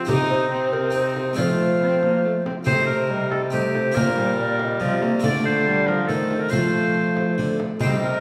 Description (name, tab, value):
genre	classical, renaissance-style consort dance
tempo	140 BPM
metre	3/4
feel	straight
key	C dorian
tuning	A4 = 438 Hz
part	clear oboe	melody	0.0-8.2 s	C4 to D5	-28 LUFS	equal	none
part	mellow hollow tenor recorder	second line	0.0-8.2 s	G4 to F5	-28 LUFS	equal	none
part	harpsichord	accompaniment	0.0-8.2 s	Bb2 to G4	-30 LUFS	equal	none
part	warm viola	accompaniment	0.0-8.2 s	F3 to Eb4	-28 LUFS	equal	none
part	warm trombone	bass	0.1-8.2 s	Bb2 to F3	-29 LUFS	equal	none
part	frame drum	percussion	0.1-8.0 s	none	-31 LUFS	equal	none
room	wet recital hall reverb, RT60 1.6 s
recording	heard from further back in the room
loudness	-21 LUFS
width	mono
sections	0.0-2.7 A section; 2.7-8.2 B section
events	none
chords	0.1 Cm; 1.4 F; 2.7 Cm; 4.0 Bb; 5.2 Dm; 6.5 F